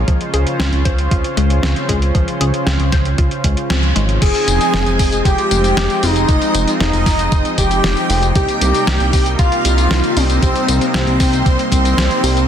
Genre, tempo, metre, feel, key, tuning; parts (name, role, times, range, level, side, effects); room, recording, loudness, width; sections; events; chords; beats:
synthwave; 116 BPM; 4/4; straight; F minor; A4 = 439 Hz
lush unison pad; sustained chords; 0.0-12.5 s; C3 to C5; -21 LUFS; equal; chorus, sidechain pumping
chorused synth bass; bass; 0.0-12.5 s; F1 to Db2; -17 LUFS; equal; tube saturation, sidechain pumping
analog pluck; arpeggios; 0.1-4.0 s; F3 to C5; -24 LUFS; left 4 dB; chorus, ping-pong delay
clean 12-bit digital drum machine; drums; 0.1-12.5 s; crash cymbal, hi-hat, snare drum, tambourine; -21 LUFS; equal
electronic kick drum; drums; 0.1-11.8 s; -16 LUFS; equal
wide unison lead; melody; 4.2-12.5 s; C4 to Ab4; -17 LUFS; equal; lush chorus, tape echo
string machine, violins; second line; 4.2-12.5 s; C5 to Ab5; -25 LUFS; equal; ensemble chorus
light reverb; dense, heavily limited modern master; -12 LUFS; side -9 dB against mid
0.0-4.2 A section; 4.2-12.5 B section
band accent 3.7
0.1 Dbmaj7; 4.2 Fm7; 8.4 Cm7
| 0.08 0.60 1.11 1.63 | 2.15 2.67 3.18 3.70 | 4.22 4.74 5.25 5.77 | 6.29 6.80 7.32 7.84 | 8.36 8.87 9.39 9.91 | 10.42 10.94 11.46 11.98